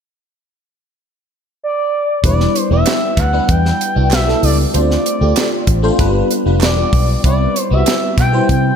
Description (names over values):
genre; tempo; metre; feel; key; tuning
polished 1980s jazz-funk pop; 96 BPM; 4/4; straight; E minor; A4 = 440 Hz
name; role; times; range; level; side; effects
expressive portamento lead; melody; 1.6-8.8 s; D5 to G5; -19 LUFS; equal; chorus, ping-pong delay
FM electric piano; accompaniment; 2.2-8.8 s; G3 to C5; -17 LUFS; left 1 dB; phaser, ensemble chorus, slapback echo
vintage muted fingered electric bass; bass; 2.2-8.7 s; E1 to C3; -15 LUFS; equal; none
tight funk drum kit; drums; 2.2-8.6 s; hi-hat, kick drum, snare drum; -18 LUFS; right 1 dB; none
group handclap; percussion; 2.9-8.3 s; none; -30 LUFS; right 8 dB; slapback echo
room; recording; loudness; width
light reverb, studio reverb; none; -12 LUFS; side -7 dB against mid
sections
0.0-2.2 A section; 2.2-8.8 B section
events
none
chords
0.0 N.C.; 2.2 Em7; 4.7 Dm7; 6.0 G7; 7.2 Cmaj7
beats
0.36 0.99 1.61 | 2.24 2.86 3.49 4.12 | 4.74 5.37 5.99 6.62 | 7.24 7.87 8.49